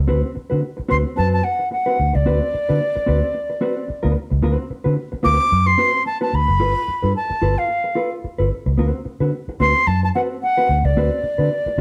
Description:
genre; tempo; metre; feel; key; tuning
funk; 110 BPM; 4/4; swing 56% on 16ths; D mixolydian; A4 = 440 Hz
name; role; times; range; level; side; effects
vintage muted fingered electric bass; bass; 0.0-11.8 s; F#1 to D3; -22 LUFS; equal; none
mellow electric guitar; accompaniment; 0.1-11.8 s; C4 to B4; -26 LUFS; equal; none
silver concert flute; melody; 0.9-11.8 s; D5 to D6; -22 LUFS; equal; none
room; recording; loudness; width
moderate studio reverb, RT60 0.9 s; band playing live in one room; -19 LUFS; mono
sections
0.1-11.8 A section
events
none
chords
0.1 D6; 6.6 G9; 8.8 D6

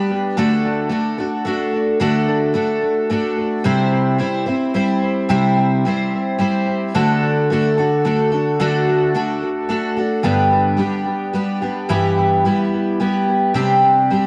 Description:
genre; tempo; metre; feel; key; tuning
rock; 109 BPM; 3/4; straight; G major from 10.2 s; A4 = 441 Hz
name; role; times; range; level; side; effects
picked twelve-string acoustic guitar; solo; 0.0-14.3 s; G2 to C5; -18 LUFS; equal; subtle chorus, analog delay
room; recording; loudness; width
moderate spring reverb, RT60 1.3 s, small room ambience; echo-heavy mix, cassette tape; -18 LUFS; mono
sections
0.0-10.2 A section; 10.2-14.3 B section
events
none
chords
0.4 D; 3.7 C; 6.9 D; 10.2 G; 11.9 Em/G; 13.6 Csus2

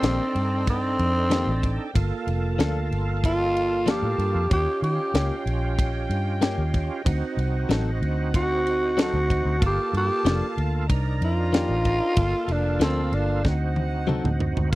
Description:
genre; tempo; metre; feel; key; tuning
straight-eighth soul blues; 94 BPM; 4/4; straight; G minor; A4 = 440 Hz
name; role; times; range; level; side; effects
growling tenor saxophone; melody; 0.0-13.4 s; C4 to G4; -24 LUFS; equal; none
overdriven tonewheel organ; accompaniment; 0.0-14.8 s; Bb3 to Bb4; -31 LUFS; right 5 dB; chorus vibrato, slow rotary speaker
clear horn section; sustained chords; 0.0-14.7 s; C5 to Bb5; -37 LUFS; left 1 dB; none
direct-recorded clean electric guitar; stabs; 0.0-14.3 s; Eb3 to A4; -28 LUFS; left 5 dB; none
vintage muted fingered electric bass; bass; 0.0-14.8 s; F1 to Eb3; -25 LUFS; equal; none
tight funk drum kit; drums; 0.0-14.8 s; crash cymbal, kick drum, ride cymbal, snare drum, toms; -23 LUFS; equal; none
room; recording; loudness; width
little or no reverb; dry, close 1970s-style studio recording; -21 LUFS; side -18 dB against mid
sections
0.0-14.7 A section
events
tenor saxophone solo 0.0-14.7; drum fill 13.5-14.7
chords
0.0 Cm9; 2.0 Gm9; 4.5 Eb7; 7.1 D7b9; 9.6 Gm9; 10.9 Cm9; 12.2 Gm9; 13.5 D7b9

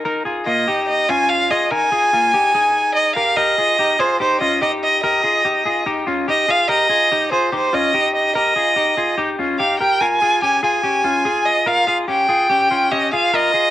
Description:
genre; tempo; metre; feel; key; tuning
indie pop; 145 BPM; 4/4; straight; unclear; A4 = 440 Hz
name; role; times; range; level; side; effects
semi-hollow electric guitar; arpeggios; 0.0-13.7 s; Bb3 to Bb4; -20 LUFS; left 2 dB; wide subtle chorus
clear violin; melody; 0.5-13.7 s; C5 to Ab5; -16 LUFS; right 1 dB; cassette tape
room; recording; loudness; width
moderate spring reverb, RT60 2.1 s; home recording on cassette; -14 LUFS; side -13 dB against mid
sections
0.0-3.4 A section; 3.4-13.7 B section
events
none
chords
0.0 Ebsus4; 3.4 Ebadd9; 10.0 Bbm7

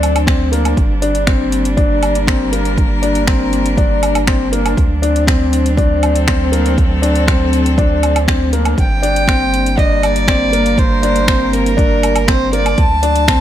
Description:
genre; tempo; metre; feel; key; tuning
piano and strings electronica; 120 BPM; 4/4; straight; G harmonic minor; A4 = 440 Hz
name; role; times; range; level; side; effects
rich string quartet; sustained chords; 0.0-13.4 s; F#3 to Bb4; -20 LUFS; right 1 dB; sidechain pumping
felt-muted upright piano; riff; 0.0-13.4 s; Bb3 to D4; -17 LUFS; left 3 dB; ping-pong delay
warm sub bass; bass; 0.0-13.4 s; G1 to D2; -18 LUFS; equal; sidechain pumping
deep house drum kit; drums; 0.0-13.4 s; finger snaps, hi-hat, woodblock; -21 LUFS; right 1 dB; none
electronic kick drum; drums; 0.3-13.4 s; none; -15 LUFS; equal; none
rich violin; melody; 8.8-13.4 s; Bb4 to A5; -17 LUFS; right 2 dB; none
room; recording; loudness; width
light reverb, studio reverb; none; -11 LUFS; side -11 dB against mid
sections
0.0-13.4 A section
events
none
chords
0.0 D7; 0.8 Gm; 4.8 D7; 8.8 Gm; 12.8 D7

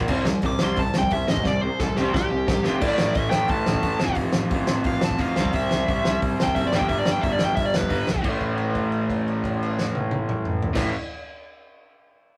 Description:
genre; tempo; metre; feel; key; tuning
punk rock; 177 BPM; 4/4; straight; A minor; A4 = 440 Hz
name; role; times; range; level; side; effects
overdriven electric guitar; riff; 0.0-10.9 s; F2 to C4; -32 LUFS; equal; none
raw garage guitar; riff; 0.0-10.9 s; F2 to C4; -29 LUFS; equal; overdrive
fuzz picked electric bass; bass; 0.0-10.9 s; F1 to C2; -32 LUFS; equal; overdrive
loose indie drum kit; drums; 0.0-10.8 s; crash cymbal, hi-hat, kick drum, snare drum, toms; -28 LUFS; equal; none
dark smooth lead guitar; melody; 0.5-8.2 s; G4 to D6; -28 LUFS; equal; overdrive
room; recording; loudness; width
light reverb; rough rehearsal-room recording; -23 LUFS; mono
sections
0.0-2.8 A section; 2.8-8.2 B section; 8.2-11.0 C section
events
lead electric guitar solo 0.0-2.8, 2.8-8.2; drum fill 1.5-2.8; held note 8.2-10.8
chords
0.1 C5; 2.6 F5; 2.8 A5; 4.0 F/A; 5.4 C; 6.7 G; 8.2 A5

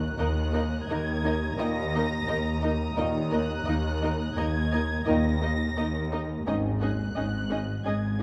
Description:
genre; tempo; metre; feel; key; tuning
cinematic, suspense film score; 86 BPM; 5/4; straight; unclear; A4 = 440 Hz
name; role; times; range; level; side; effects
muted studio violin section; melody; 0.0-8.2 s; Gb6 to Bb6; -39 LUFS; equal; none
muted studio cello section; bass; 0.0-8.2 s; Eb2 to Ab2; -34 LUFS; equal; none
muted studio double bass section; bass; 0.0-8.2 s; Ab1 to Eb2; -33 LUFS; equal; none
organ-like drone; drone; 0.2-8.2 s; Ab1 to Eb2; -39 LUFS; equal; none
celesta; texture; 0.0-6.5 s; Db6; -60 LUFS; equal; none
muted studio violin section; texture; 0.0-6.1 s; Bb5 to Eb6; -44 LUFS; equal; none
muted studio violin section; second line; 0.2-8.2 s; Ab4 to Eb5; -38 LUFS; equal; none
muted studio viola section; accompaniment; 0.2-8.2 s; Bb3 to Eb4; -36 LUFS; equal; none
mellow French horn section; sustained chords; 1.6-6.7 s; Bb3 to Eb4; -39 LUFS; equal; none
mellow trombone section; sustained chords; 1.6-6.7 s; Ab2 to Eb3; -36 LUFS; equal; none
room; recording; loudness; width
moderate scoring stage reverb, RT60 1.6 s; dark, warm production, vinyl crackle; -28 LUFS; mono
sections
0.0-8.2 A section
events
none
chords
0.0 Ebm; 6.5 Absus4

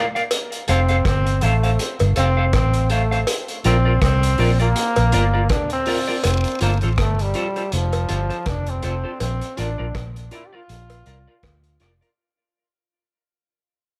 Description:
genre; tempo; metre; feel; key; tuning
roots reggae; 81 BPM; 4/4; swing 57% on 16ths; F major; A4 = 440 Hz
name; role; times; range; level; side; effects
semi-hollow electric guitar; accompaniment; 0.0-12.1 s; F4 to F5; -28 LUFS; equal; tape echo
vintage drum kit; drums; 0.2-12.2 s; hi-hat, kick drum, rim click; -28 LUFS; equal; none
cowbell and jawbone-type rattle; percussion; 0.3-11.6 s; none; -30 LUFS; equal; none
bright trombone; melody; 0.7-11.8 s; F3 to G4; -26 LUFS; equal; tape echo
vintage muted fingered electric bass; bass; 0.7-12.0 s; F1 to D2; -22 LUFS; equal; none
room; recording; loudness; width
light reverb, small room ambience; vinyl crackle; -20 LUFS; mono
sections
0.0-6.2 A section; 6.2-12.2 B section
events
fade-out 6.2-12.2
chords
0.3 F; 3.3 Bb; 6.2 F; 9.2 Bb

